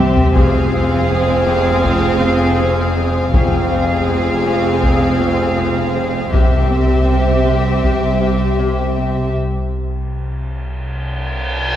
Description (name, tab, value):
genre	cinematic, suspense film score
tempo	80 BPM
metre	4/4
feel	straight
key	F harmonic minor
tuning	A4 = 436 Hz
part	dark studio violin section	melody	0.0-9.3 s	E5 to F5	-24 LUFS	left 3 dB	none
part	warm symphonic violin section	second line	0.0-9.3 s	G4 to Ab4	-23 LUFS	left 2 dB	none
part	warm chamber viola section	accompaniment	0.0-9.3 s	C4	-21 LUFS	right 3 dB	none
part	Celtic harp	riff	0.0-11.8 s	F2 to C4	-22 LUFS	left 4 dB	none
part	dark symphonic double bass section	bass	0.0-9.3 s	F1 to C2	-20 LUFS	right 1 dB	none
part	rich symphonic cello section	bass	0.0-9.3 s	C2 to F2	-22 LUFS	right 2 dB	none
part	deep rumbling drone	drone	0.0-11.8 s	C2 to F2	-24 LUFS	equal	built-in reverb
part	taiko ensemble	drums	0.2-8.5 s	none	-18 LUFS	equal	none
part	reverse cymbal	sound effects	10.6-11.8 s	none	-24 LUFS	right 1 dB	none
room	wet concert hall reverb, RT60 2.5 s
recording	heard from further back in the room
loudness	-13 LUFS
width	side -11 dB against mid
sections	0.0-11.8 A section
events	drum fill 0.0-0.3; break 9.4-11.8; reverse cymbal 10.6-11.8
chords	0.3 Fm; 6.3 C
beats	| 0.35 1.10 1.84 2.59 | 3.34 4.08 4.83 5.58 | 6.33 7.08 7.83 8.59 | 9.36 10.14 10.93 11.71